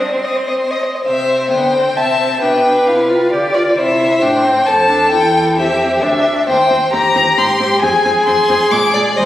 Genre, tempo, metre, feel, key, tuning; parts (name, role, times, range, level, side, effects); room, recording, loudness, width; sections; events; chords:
quick classical-period movement for string quartet; 133 BPM; 3/4; straight; C major; A4 = 441 Hz
rich violin; melody; 0.0-9.3 s; D5 to Eb6; -15 LUFS; left 2 dB
warm violin; second line; 0.0-9.3 s; G4 to E5; -15 LUFS; left 1 dB
rich viola; accompaniment; 0.0-9.3 s; G3 to G4; -20 LUFS; right 1 dB
rich cello; bass; 0.0-9.3 s; D2 to D4; -25 LUFS; right 1 dB
wet scoring stage reverb, RT60 1.8 s; recorded on a phone in the room, studio reverb, compression; -11 LUFS; side -13 dB against mid
0.0-1.1 A section; 1.1-9.3 B section
0.0 Cm; 1.1 C; 2.4 G7/B; 3.8 C; 5.1 C/E; 6.5 Cm/Eb; 7.4 Ab; 7.8 Fm; 8.7 Bb7